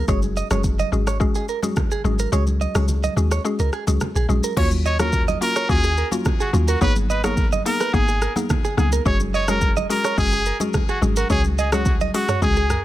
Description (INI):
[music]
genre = afrobeats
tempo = 107 BPM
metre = 4/4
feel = straight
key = F# major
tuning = A4 = 440 Hz
[part]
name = direct-recorded clean electric guitar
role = riff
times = 0.0-12.8 s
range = G#4 to D#5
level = -27 LUFS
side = right 8 dB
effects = wide subtle chorus
[part]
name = deep log drum bass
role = bass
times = 0.0-12.8 s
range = F#1 to D#2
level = -21 LUFS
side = equal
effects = none
[part]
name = mallet-like synth pluck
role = accompaniment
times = 0.1-12.6 s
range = G#3 to G#4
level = -26 LUFS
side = left 4 dB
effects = chorus
[part]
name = afro-pop drum kit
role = drums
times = 0.1-12.8 s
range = crash cymbal, hi-hat, kick drum, rim click, shaker, toms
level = -23 LUFS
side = equal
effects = none
[part]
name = congas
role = percussion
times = 0.2-12.1 s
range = none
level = -29 LUFS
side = right 3 dB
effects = none
[part]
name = bright trumpet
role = melody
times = 4.6-12.8 s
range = F#4 to C#5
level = -24 LUFS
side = equal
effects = ping-pong delay
[sound]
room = little or no reverb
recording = none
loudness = -18 LUFS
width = side -14 dB against mid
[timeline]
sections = 0.0-4.6 A section; 4.6-12.8 B section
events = kick muted 2.3-4.6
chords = 0.1 F#sus2; 2.3 C#sus4; 4.6 D#m7; 6.8 G#madd9; 9.1 F#sus2; 11.3 C#sus4